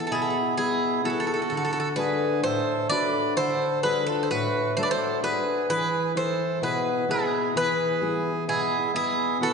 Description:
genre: greek folk, Greek bouzouki band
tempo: 129 BPM (eighths)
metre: 9/8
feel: straight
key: unclear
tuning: A4 = 440 Hz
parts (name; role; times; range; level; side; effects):
- Greek bouzouki; melody; 0.0-9.5 s; G#4 to D5; -26 LUFS; equal; none
- fingerpicked steel-string acoustic guitar; accompaniment; 0.0-9.5 s; A2 to B4; -28 LUFS; left 2 dB; none
- accordion; second line; 0.1-9.5 s; E4 to B4; -30 LUFS; right 5 dB; none
room: wet concert hall reverb, RT60 2.0 s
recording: recorded in a church or concert hall, nothing above 10.3 kHz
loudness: -23 LUFS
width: side -5 dB against mid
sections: 0.0-1.5 A section; 1.5-9.5 B section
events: none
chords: 0.0 E; 1.5 D; 5.7 E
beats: 0.12 0.58 1.05 | 1.51 1.98 2.44 2.90 3.37 3.83 4.30 4.76 5.23 | 5.69 6.16 6.62 7.08 7.55 8.01 8.48 8.94 9.41

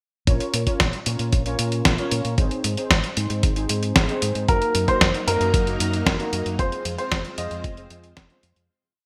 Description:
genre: italo disco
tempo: 114 BPM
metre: 4/4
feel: straight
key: Bb minor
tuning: A4 = 440 Hz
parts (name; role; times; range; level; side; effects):
- analog synth brass; stabs; 0.3-8.5 s; Bb3 to Eb5; -31 LUFS; equal; chorus
- fingered electric bass with an envelope filter; bass; 0.3-8.7 s; F1 to Bb2; -29 LUFS; equal; none
- dusty soul sampler-style drum kit; drums; 0.3-8.7 s; hi-hat, snare drum; -25 LUFS; equal; small room ambience, gated reverb
- electronic kick drum; drums; 0.3-8.3 s; none; -24 LUFS; equal; small room ambience
- warm baby grand piano; melody; 4.5-8.6 s; Bb4 to Eb5; -28 LUFS; equal; digital delay
- string machine, full ensemble; sustained chords; 4.5-8.7 s; Gb3 to C5; -35 LUFS; equal; ensemble chorus, vintage 12-bit sampler grit
room: moderate plate reverb, RT60 1.6 s, digital ambience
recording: bright 1980s-style digital production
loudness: -22 LUFS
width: mono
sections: 0.3-8.7 verse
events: fade-out 5.9-8.7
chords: 0.3 Bbm; 2.4 Ab; 4.5 Ebm/Gb; 6.6 Fm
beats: | 0.27 0.80 1.33 1.85 | 2.38 2.90 3.43 3.96 | 4.48 5.01 5.54 6.06 | 6.59 7.12 7.64 8.17

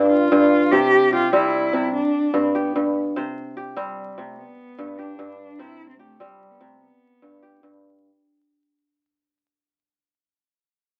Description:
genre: west african traditional, West African string and xylophone music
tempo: 99 BPM (dotted quarters)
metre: 12/8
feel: straight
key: C major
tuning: A4 = 439 Hz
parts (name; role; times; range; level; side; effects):
- dark cello; melody; 0.0-7.6 s; G3 to G4; -23 LUFS; equal; none
- kora; arpeggios; 0.0-8.8 s; G2 to C5; -22 LUFS; equal; none
room: moderate studio reverb, RT60 0.5 s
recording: very old 78 rpm record, vinyl crackle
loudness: -19 LUFS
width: mono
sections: 0.0-8.0 A section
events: fade-out 0.0-8.0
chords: 0.0 N.C.; 0.7 C; 1.9 N.C.; 3.2 C5; 4.4 N.C.; 5.6 C5; 6.8 N.C.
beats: 0.11 | 0.72 1.33 1.94 2.55 | 3.15 3.76 4.37 4.98 | 5.59 6.20 6.81 7.42

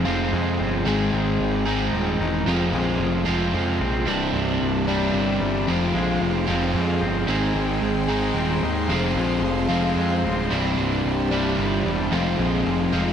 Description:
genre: post-rock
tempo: 112 BPM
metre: 3/4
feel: straight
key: unclear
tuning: A4 = 440 Hz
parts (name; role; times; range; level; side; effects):
- twangy electric guitar; arpeggios; 0.0-13.1 s; C2 to Eb4; -26 LUFS; left 2 dB; spring reverb, digital delay
- overdriven electric guitar; riff; 0.0-13.1 s; C2 to Ab4; -23 LUFS; right 1 dB; none
- fuzz picked electric bass; bass; 0.0-13.1 s; C1 to F2; -26 LUFS; equal; overdrive
- clear symphonic string section; sustained chords; 4.1-13.1 s; G4 to C6; -33 LUFS; left 1 dB; none
room: moderate lush hall reverb, RT60 2.1 s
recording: big arena sound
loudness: -20 LUFS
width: side -8 dB against mid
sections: 0.0-13.1 A section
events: none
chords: 0.0 Fm; 0.9 Ab; 2.5 Fm; 4.1 Csus2; 5.7 Fm; 7.3 Abmaj7; 8.9 Fm; 10.5 Csus2; 12.1 Fm7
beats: 0.32 | 0.86 1.40 1.93 | 2.47 3.00 3.54 | 4.07 4.61 5.15 | 5.68 6.22 6.75 | 7.29 7.83 8.36 | 8.90 9.44 9.97 | 10.51 11.04 11.58 | 12.12 12.65

